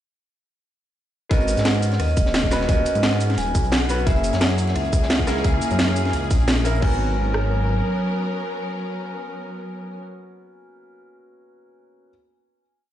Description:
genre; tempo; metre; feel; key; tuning
liquid drum and bass; 174 BPM; 4/4; swing 54% on 16ths; G# minor; A4 = 438 Hz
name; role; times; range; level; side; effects
vibraphone with medium mallets; melody; 1.3-10.0 s; D#5 to G#5; -29 LUFS; equal; vintage 12-bit sampler grit, dub echo
clear concert grand piano; accompaniment; 1.3-12.1 s; A#3 to B4; -29 LUFS; left 1 dB; none
dark detuned saw bass; bass; 1.3-7.8 s; D#1 to G#2; -22 LUFS; equal; tube saturation
crunchy breakbeat drum kit; drums; 1.3-6.8 s; hi-hat, snare drum; -31 LUFS; equal; high-pass filter on hats, high-pass filter on snare, high-pass filter on room
drum and bass drum kit; drums; 1.3-7.4 s; kick drum, rim click; -20 LUFS; equal; overdrive
drum and bass drum kit; drums; 1.3-6.9 s; cabasa, crash cymbal, hi-hat, rim click, snare drum; -24 LUFS; equal; overdrive
rich studio string section; sustained chords; 4.1-10.0 s; E3 to A#4; -28 LUFS; equal; none
room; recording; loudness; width
light reverb, small room ambience; played on a big sound system in a bare room, stone room reverb, nothing above 10.8 kHz; -18 LUFS; side -11 dB against mid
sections
1.3-6.8 drop; 6.8-9.6 final chord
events
drop 1.3-6.8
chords
1.3 G#m11; 4.1 F#9; 6.8 G#m11

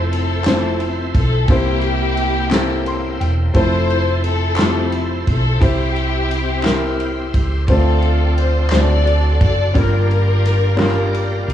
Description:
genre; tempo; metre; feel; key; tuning
slow gospel; 58 BPM (dotted quarters); 6/8; straight; F major; A4 = 440 Hz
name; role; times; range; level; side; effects
dark studio string section; melody; 0.0-11.5 s; Bb3 to D5; -22 LUFS; left 2 dB; none
warm baby grand piano; accompaniment; 0.0-11.5 s; G2 to C6; -21 LUFS; left 2 dB; none
bright tonewheel organ; sustained chords; 0.0-11.5 s; Bb3 to C6; -29 LUFS; right 3 dB; overdrive, chorus vibrato, slow rotary speaker
hollow-body short-scale fingered electric bass; bass; 0.0-11.5 s; E1 to D2; -18 LUFS; right 1 dB; none
natural country drum kit; drums; 0.1-11.5 s; kick drum, ride cymbal, snare drum; -20 LUFS; right 1 dB; none
group handclap; percussion; 0.4-11.1 s; none; -28 LUFS; left 1 dB; none
room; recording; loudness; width
light reverb; worn, warbling old tape, cassette tape, warbly pitch drift, small room ambience; -14 LUFS; side -11 dB against mid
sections
0.0-11.5 A section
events
grand piano fill 2.5-3.6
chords
0.0 Fmaj7; 1.5 C7; 3.6 Fmaj7; 5.6 C; 7.7 Dm7; 8.7 D7; 9.7 Gm7

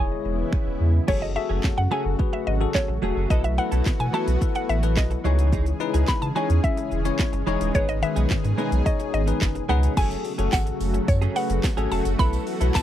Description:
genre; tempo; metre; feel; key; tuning
dance-pop; 108 BPM; 4/4; straight; F# dorian; A4 = 440 Hz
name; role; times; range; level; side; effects
mallet-like synth pluck; melody; 0.0-12.8 s; C#5 to B5; -29 LUFS; equal; chorus
bell-like tine electric piano; accompaniment; 0.0-12.8 s; D#3 to E5; -29 LUFS; left 15 dB; sidechain pumping
lush unison pad; sustained chords; 0.0-12.8 s; B2 to G#4; -30 LUFS; right 1 dB; chorus, sidechain pumping
saturated sub bass; bass; 0.0-12.8 s; D#1 to C#3; -23 LUFS; equal; sidechain pumping
house drum kit; drums; 0.5-12.8 s; crash cymbal, finger snaps, handclaps, hi-hat, kick drum, shaker, snare drum; -25 LUFS; equal; none
direct-recorded clean electric guitar; riff; 1.1-12.8 s; E3 to A4; -31 LUFS; right 8 dB; ensemble chorus
tambourine; percussion; 10.0-12.8 s; none; -43 LUFS; right 19 dB; none
room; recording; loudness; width
little or no reverb; dry, close 1970s-style studio recording; -20 LUFS; side -11 dB against mid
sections
0.0-1.1 A section; 1.1-10.0 B section; 10.0-12.8 C section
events
none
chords
0.0 E6; 1.1 F#madd9; 3.3 B7sus4; 5.2 C#madd9; 7.7 G#m; 10.0 F#madd9; 12.2 B7sus4

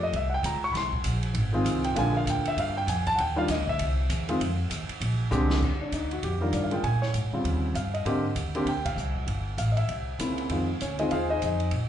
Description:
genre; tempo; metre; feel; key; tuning
jazz piano trio; 197 BPM; 4/4; swing 60% on 8ths; Eb major; A4 = 440 Hz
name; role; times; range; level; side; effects
warm concert grand piano; melody; 0.0-11.7 s; Db3 to Db6; -28 LUFS; equal; slapback echo
upright bass; bass; 0.0-11.9 s; G1 to Bb2; -28 LUFS; equal; none
open jazz drum kit; drums; 0.1-11.8 s; crash cymbal, hi-hat, kick drum, ride cymbal, snare drum; -35 LUFS; right 2 dB; none
room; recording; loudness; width
light reverb, small room ambience; live gig heard through the venue's PA, club reverb, nothing above 10.3 kHz; -25 LUFS; side -10 dB against mid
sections
0.0-5.6 A section; 5.6-11.9 B section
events
grand piano solo 0.0-5.6; drum fill 5.3-5.6; band accent 8.8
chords
0.1 C7b9; 0.7 Fm7; 2.0 Bb7; 3.2 Ebmaj9; 3.8 C; 4.4 Ebsus2; 5.0 Bb13; 5.6 Ebmaj9; 6.8 Bbm7; 7.4 Eb13; 8.1 Abmaj9#11; 9.3 Gsus2; 9.9 C7b9; 10.5 Fm7

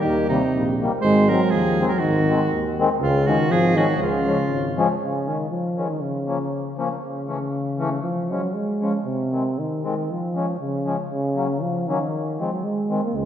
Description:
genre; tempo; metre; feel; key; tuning
alpine folk, alpine dance band; 119 BPM; 2/4; swing 54% on 8ths; Db major; A4 = 439 Hz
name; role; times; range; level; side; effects
mellow euphonium; melody; 0.0-13.3 s; C3 to Bb3; -22 LUFS; equal; none
mellow soprano saxophone; second line; 0.0-4.7 s; Eb4 to C5; -26 LUFS; right 3 dB; none
mellow tuba; bass; 0.1-4.8, 13.1-13.3 s; Ab1 to Eb2; -25 LUFS; right 1 dB; none
mellow accordion; accompaniment; 0.3-13.0 s; Eb3 to Db4; -26 LUFS; left 3 dB; none
room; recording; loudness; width
wet concert hall reverb, RT60 2.1 s; heard from further back in the room; -20 LUFS; side -10 dB against mid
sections
0.0-5.0 A section; 5.0-13.3 B section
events
none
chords
0.0 Eb; 1.0 Ab7; 3.0 Db; 5.0 Dbsus2; 6.0 Bbm; 7.0 A; 8.0 Db; 9.1 Ab; 10.1 Db; 11.1 Gb; 12.1 Ab

